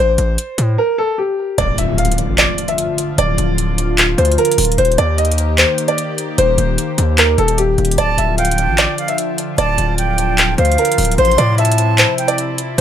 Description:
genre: hip hop, trap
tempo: 150 BPM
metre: 4/4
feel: half-time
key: D minor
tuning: A4 = 440 Hz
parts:
  - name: clear concert grand piano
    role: melody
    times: 0.0-12.8 s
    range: G4 to F5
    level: -17 LUFS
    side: equal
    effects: none
  - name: distorted 808-style bass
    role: bass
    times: 0.0-12.8 s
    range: D1 to A2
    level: -16 LUFS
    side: equal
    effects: distortion
  - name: booming analog drum machine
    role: drums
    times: 0.2-12.8 s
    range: handclaps, hi-hat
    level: -17 LUFS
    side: equal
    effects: none
  - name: warm analog pad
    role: sustained chords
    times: 1.6-12.8 s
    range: C3 to G4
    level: -22 LUFS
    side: left 2 dB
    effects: lush chorus
  - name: impact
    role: sound effects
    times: 1.6-3.2 s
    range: none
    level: -24 LUFS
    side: left 1 dB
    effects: none
  - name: breathy silver concert flute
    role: second line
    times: 8.0-12.8 s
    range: F5 to C6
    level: -20 LUFS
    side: right 5 dB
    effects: ping-pong delay
room: little or no reverb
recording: none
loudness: -13 LUFS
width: side -9 dB against mid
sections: 0.0-1.6 A section; 1.6-12.8 B section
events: break 0.8-1.6; impact 1.6-3.2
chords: 0.0 Am; 1.6 Dm; 4.8 Eb; 8.0 Dm; 11.2 Am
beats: 0.38 0.78 1.18 | 1.58 1.98 2.38 2.78 | 3.18 3.58 3.98 4.38 | 4.78 5.18 5.58 5.98 | 6.38 6.78 7.18 7.58 | 7.98 8.38 8.78 9.18 | 9.58 9.98 10.38 10.78 | 11.18 11.58 11.98 12.38 | 12.78

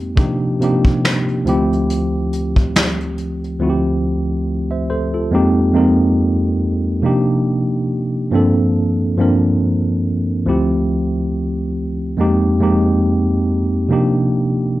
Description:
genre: lo-fi hip hop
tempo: 70 BPM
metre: 4/4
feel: swing 56% on 16ths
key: D phrygian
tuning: A4 = 436 Hz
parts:
  - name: mellow tine electric piano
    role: accompaniment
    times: 0.0-14.8 s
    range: D2 to E5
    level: -15 LUFS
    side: equal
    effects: medium stereo tremolo
  - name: vintage brush drum kit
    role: drums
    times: 0.0-3.6 s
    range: finger snaps, hi-hat, kick drum, snare drum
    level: -16 LUFS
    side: equal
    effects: none
room: wet small room reverb, RT60 0.6 s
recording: cassette tape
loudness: -14 LUFS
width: side -16 dB against mid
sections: 0.0-3.6 A section; 3.6-14.8 B section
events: none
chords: 0.2 Cm11; 1.5 Dm11; 5.3 Fm11; 7.0 Cm11; 8.3 Gm11; 10.5 Dm11; 12.2 Fm11; 13.9 Cm11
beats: | 0.18 1.04 1.89 2.75 | 3.61 4.47 5.32 6.18 | 7.04 7.89 8.75 9.61 | 10.47 11.32 12.18 13.04 | 13.89 14.75

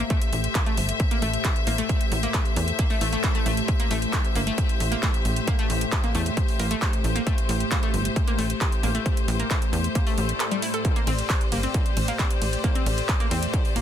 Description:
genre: driving peak-time techno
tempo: 134 BPM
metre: 4/4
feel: straight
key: A phrygian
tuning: A4 = 440 Hz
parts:
  - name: analog pluck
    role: riff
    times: 0.0-13.8 s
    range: G3 to A4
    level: -32 LUFS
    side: equal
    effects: chorus, sidechain pumping, ping-pong delay
  - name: tight sequencer bass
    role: bass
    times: 0.0-13.8 s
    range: G1 to E2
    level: -26 LUFS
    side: equal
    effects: sidechain pumping
  - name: deep dark ambient pad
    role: drone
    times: 0.0-13.8 s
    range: A2 to A3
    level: -33 LUFS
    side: equal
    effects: chorus, built-in reverb, sidechain pumping
  - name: clear studio string section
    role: texture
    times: 0.0-13.8 s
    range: G4 to E5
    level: -30 LUFS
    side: left 5 dB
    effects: sidechain pumping
  - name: electronic kick drum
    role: drums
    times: 0.1-13.6 s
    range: none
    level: -24 LUFS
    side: equal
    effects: distortion, overdrive
  - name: techno drum kit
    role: drums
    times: 0.1-13.8 s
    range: handclaps, hi-hat, ride cymbal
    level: -31 LUFS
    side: right 1 dB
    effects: overdrive, sidechain pumping on hats, sidechain pumping on cymbals
  - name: swell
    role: sound effects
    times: 10.1-10.8 s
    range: none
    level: -34 LUFS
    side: left 4 dB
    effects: none
room: little or no reverb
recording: dense, heavily limited modern master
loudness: -21 LUFS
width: side -10 dB against mid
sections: 0.0-13.8 A section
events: swell 10.1-10.8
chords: 0.0 Am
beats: | 0.10 0.55 1.00 1.45 | 1.89 2.34 2.79 3.24 | 3.68 4.13 4.58 5.03 | 5.47 5.92 6.37 6.82 | 7.27 7.71 8.16 8.61 | 9.06 9.51 9.95 10.40 | 10.85 11.30 11.74 12.19 | 12.64 13.09 13.54

